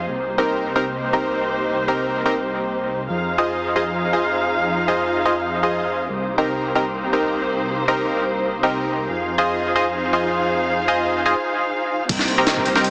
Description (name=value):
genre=drum and bass, jungle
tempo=160 BPM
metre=4/4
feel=swing 54% on 16ths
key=C minor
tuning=A4 = 439 Hz
part: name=dark studio string section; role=sustained chords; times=0.0-12.9 s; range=Bb3 to F5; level=-22 LUFS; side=equal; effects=none
part: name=band-passed chord stab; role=stabs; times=0.0-12.8 s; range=C4 to Eb5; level=-20 LUFS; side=equal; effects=chorus, dub echo
part: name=dark detuned saw bass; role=bass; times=0.0-12.9 s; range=C2 to F2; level=-31 LUFS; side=equal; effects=tube saturation
part: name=breakbeat sampler-style drum kit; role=drums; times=12.1-12.9 s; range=crash cymbal, hi-hat, kick drum, snare drum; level=-19 LUFS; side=equal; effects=none
part: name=sub drop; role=sound effects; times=12.2-12.9 s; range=none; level=-44 LUFS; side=equal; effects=none
room=moderate plate reverb, RT60 1.7 s, digital ambience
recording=heavily compressed radio sound, multiband compression, small speaker sound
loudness=-18 LUFS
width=side -34 dB against mid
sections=0.0-12.1 A section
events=filter sweep on synth stab 0.0-12.1; break 11.3-12.1; impact 12.1-12.9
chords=0.1 Cm7; 3.1 Fm7; 6.1 Cm7; 9.1 Fm7; 12.1 Cm7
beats=| 0.09 0.47 0.84 1.22 | 1.59 1.97 2.34 2.72 | 3.09 3.47 3.84 4.22 | 4.59 4.97 5.34 5.72 | 6.09 6.47 6.84 7.22 | 7.59 7.97 8.34 8.72 | 9.09 9.47 9.84 10.22 | 10.59 10.97 11.34 11.72 | 12.09 12.47 12.84